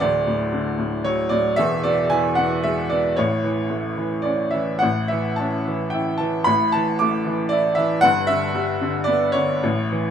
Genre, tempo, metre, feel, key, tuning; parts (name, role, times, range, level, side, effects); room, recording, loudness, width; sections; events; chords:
classical, lyrical solo piano; 113 BPM; 3/4; rubato; G lydian; A4 = 440 Hz
bright upright piano; solo; 0.0-10.1 s; D1 to D6; -18 LUFS; equal
light reverb; minimal, uncompressed stereo recording; -18 LUFS; side -8 dB against mid
0.0-10.1 A section
0.0 D; 1.6 E; 3.2 A; 6.5 Asus24; 8.0 G